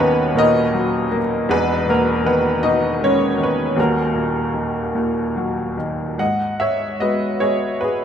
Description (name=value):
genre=classical, lyrical solo piano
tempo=49-53 BPM (dotted quarters)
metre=6/8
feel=rubato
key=unclear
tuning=A4 = 440 Hz
part: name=bright upright piano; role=solo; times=0.0-8.0 s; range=D#1 to F#5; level=-16 LUFS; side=equal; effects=none
room=moderate recital hall reverb, RT60 1.7 s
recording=none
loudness=-17 LUFS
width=side -8 dB against mid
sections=0.0-6.2 A section; 6.2-8.0 B section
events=none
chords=0.0 Bmaj7/D#; 1.5 Emaj7; 3.8 D#m; 6.2 G#m7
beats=0.35 | 1.49 2.62 | 3.78 4.97 | 6.20 7.42